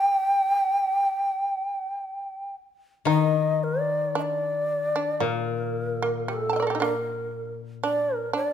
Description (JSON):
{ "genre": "japanese traditional, Japanese chamber music", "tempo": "54-59 BPM", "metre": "4/4", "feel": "rubato", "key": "G hirajoshi", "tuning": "A4 = 438 Hz", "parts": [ { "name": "breathy long shakuhachi", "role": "melody", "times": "0.0-8.5 s", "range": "A4 to G5", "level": "-25 LUFS", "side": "equal", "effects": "none" }, { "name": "shamisen", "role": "second line", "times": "0.0-8.5 s", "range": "A3 to A5", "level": "-28 LUFS", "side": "right 4 dB", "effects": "none" }, { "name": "koto", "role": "accompaniment", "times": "3.1-8.3 s", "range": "Bb2 to Eb3", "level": "-28 LUFS", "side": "left 8 dB", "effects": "none" } ], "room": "moderate recital hall reverb, RT60 1.4 s", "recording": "minimal, uncompressed stereo recording", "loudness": "-23 LUFS", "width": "side -9 dB against mid", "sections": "0.0-3.1 A section; 3.1-8.5 B section", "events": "none", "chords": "none" }